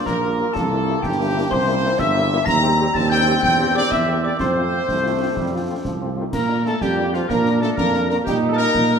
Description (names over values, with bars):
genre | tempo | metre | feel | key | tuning
military-style march for wind band | 124 BPM (dotted quarters) | 6/8 | straight | Bb major | A4 = 440 Hz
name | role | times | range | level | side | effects
glockenspiel with soft plastic mallets | second line | 0.0-6.1 s | G5 to Bb6 | -26 LUFS | left 2 dB | none
warm trombone section | sustained chords | 0.0-9.0 s | Eb3 to Eb4 | -27 LUFS | right 2 dB | none
warm trumpet section | melody | 0.1-9.0 s | F4 to Bb5 | -24 LUFS | equal | none
warm woodwind section | second line | 0.1-9.0 s | F4 to Bb5 | -25 LUFS | left 2 dB | none
mellow tuba | bass | 0.1-9.0 s | G1 to Bb2 | -22 LUFS | right 2 dB | none
concert snare drum, concert bass drum and clash cymbals | drums | 0.1-8.9 s | none | -29 LUFS | equal | none
warm French horn section | accompaniment | 0.2-9.0 s | G3 to G4 | -29 LUFS | left 4 dB | none
warm euphonium | second line | 6.3-9.0 s | F3 to Bb3 | -25 LUFS | right 4 dB | none
wooden piccolo | second line | 6.3-9.0 s | F5 to Bb5 | -25 LUFS | left 5 dB | none
room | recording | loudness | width
wet recital hall reverb, RT60 1.3 s | none | -17 LUFS | side -6 dB against mid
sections
0.0-6.3 A section; 6.3-9.0 B section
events
none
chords
0.0 Gm7/Bb; 0.5 C7; 2.5 Cm/Eb; 3.4 C7/E; 4.4 F; 6.3 Bb; 8.3 Eb/Bb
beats
0.06 | 0.54 1.02 | 1.51 1.99 | 2.47 2.95 | 3.43 3.92 | 4.40 4.88 | 5.36 5.85 | 6.33 6.81 | 7.29 7.78 | 8.26 8.74